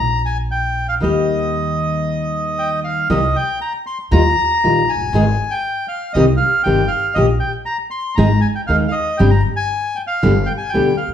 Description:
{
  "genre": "tango",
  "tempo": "117 BPM",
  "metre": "4/4",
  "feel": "rubato",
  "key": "Eb major, C minor from 3.1 s",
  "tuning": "A4 = 442 Hz",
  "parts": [
    { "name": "bandoneon", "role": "melody", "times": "0.0-11.1 s", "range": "Eb5 to C6", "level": "-19 LUFS", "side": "equal", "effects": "none" },
    { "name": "upright bass", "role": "bass", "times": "0.0-11.1 s", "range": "F1 to Eb2", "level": "-19 LUFS", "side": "equal", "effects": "none" },
    { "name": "nylon-string guitar", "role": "accompaniment", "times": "1.0-10.9 s", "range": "B2 to Ab4", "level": "-18 LUFS", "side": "left 1 dB", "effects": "none" }
  ],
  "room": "wet large studio reverb, RT60 0.9 s",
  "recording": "band playing live in one room, vinyl crackle",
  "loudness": "-15 LUFS",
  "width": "side -9 dB against mid",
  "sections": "0.0-3.1 A section; 3.1-11.1 B section",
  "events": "none",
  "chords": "0.0 Gm/Bb; 1.0 Eb; 3.1 Cm; 4.1 Ebadd9; 5.1 Ab5; 6.2 Cm; 7.2 Eb/Bb (rootless); 8.2 Ab; 9.2 Gsus4; 10.2 G"
}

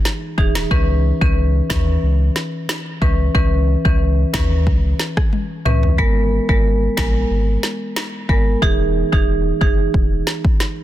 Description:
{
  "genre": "dancehall",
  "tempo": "91 BPM",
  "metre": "4/4",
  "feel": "straight",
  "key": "unclear",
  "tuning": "A4 = 435 Hz",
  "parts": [
    { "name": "afro-pop drum kit", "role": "drums", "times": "0.1-10.8 s", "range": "kick drum, rim click, snare drum, toms", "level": "-18 LUFS", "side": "equal", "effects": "none" },
    { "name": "marimba with hard mallets", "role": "accompaniment", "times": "0.4-9.8 s", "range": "E3 to B4", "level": "-21 LUFS", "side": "equal", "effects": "sidechain pumping" },
    { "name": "warm sub bass", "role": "bass", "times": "0.4-10.2 s", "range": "E1 to D#2", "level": "-18 LUFS", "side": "equal", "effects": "none" }
  ],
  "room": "digital ambience",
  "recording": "dense, heavily limited modern master",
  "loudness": "-15 LUFS",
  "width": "side -13 dB against mid",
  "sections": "0.0-10.8 A section",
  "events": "drum fill 5.3-6.0",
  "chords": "0.0 Emaj7; 0.7 C#m7; 6.0 G#madd9; 8.6 Emaj7"
}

